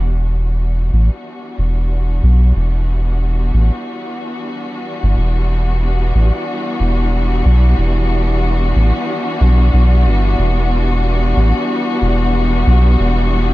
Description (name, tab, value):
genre	ambient dub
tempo	92 BPM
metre	4/4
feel	swing 58% on 16ths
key	E minor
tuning	A4 = 435 Hz
part	muted studio string section	sustained chords	0.0-13.5 s	E3 to F#4	-20 LUFS	left 1 dB	none
part	soft dub sub bass	bass	0.0-13.5 s	E1 to B1	-13 LUFS	equal	none
room	small room ambience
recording	none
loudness	-12 LUFS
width	side -18 dB against mid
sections	0.0-13.5 A section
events	fade-in on string section 0.0-13.5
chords	0.0 Em9